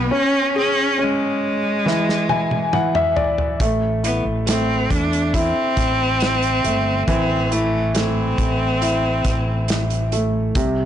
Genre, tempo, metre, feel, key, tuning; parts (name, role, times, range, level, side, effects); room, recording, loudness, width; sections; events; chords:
pop ballad; 69 BPM; 4/4; straight; A minor from 3.6 s; A4 = 440 Hz
clear cello; melody; 0.0-10.1 s; G#3 to D4; -21 LUFS; equal
clear concert grand piano; accompaniment; 0.0-10.9 s; C3 to G#5; -21 LUFS; equal
mellow fretless electric bass; bass; 0.0-10.9 s; G1 to E2; -23 LUFS; equal
loose indie drum kit; drums; 1.9-10.8 s; hi-hat, kick drum, snare drum, toms; -24 LUFS; equal
tambourine; percussion; 10.6-10.8 s; barely audible
light reverb; blown-out, overdriven recording, overdrive, nothing above 10.7 kHz; -17 LUFS; side -10 dB against mid
0.0-3.6 A section; 3.6-10.9 A section
grand piano fill 1.9-3.6; drum fill 1.9-3.6
0.1 C#5; 1.9 N.C.; 3.6 Am